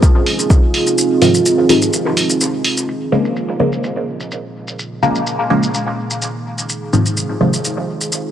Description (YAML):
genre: dub techno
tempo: 126 BPM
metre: 4/4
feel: straight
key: Bb minor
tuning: A4 = 445 Hz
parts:
  - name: deep dark ambient pad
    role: sustained chords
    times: 0.0-8.3 s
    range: Bb3 to Ab4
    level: -19 LUFS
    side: right 2 dB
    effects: chorus, built-in reverb, sidechain pumping
  - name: electronic kick drum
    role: drums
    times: 0.0-0.6 s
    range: none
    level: -10 LUFS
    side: equal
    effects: none
  - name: electronic shaker and hi-hat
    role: drums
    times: 0.0-8.2 s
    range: none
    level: -19 LUFS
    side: equal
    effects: low-pass filter on perc, low-pass filter on hats, low-pass filter on room
  - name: filtered dub chord stab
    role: stabs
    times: 1.2-7.6 s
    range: Ab2 to Bb3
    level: -17 LUFS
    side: equal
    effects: phaser, sidechain pumping, dub echo
room: wet lush hall reverb, RT60 2.3 s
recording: dry, gritty hardware recording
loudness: -14 LUFS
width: side -10 dB against mid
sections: 0.0-2.9 A section; 2.9-8.3 B section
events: kick drops out 1.0-2.9; filter sweep on ambient pad 2.9-8.3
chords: 0.0 Fm7; 2.9 Bbm7; 6.7 Fm7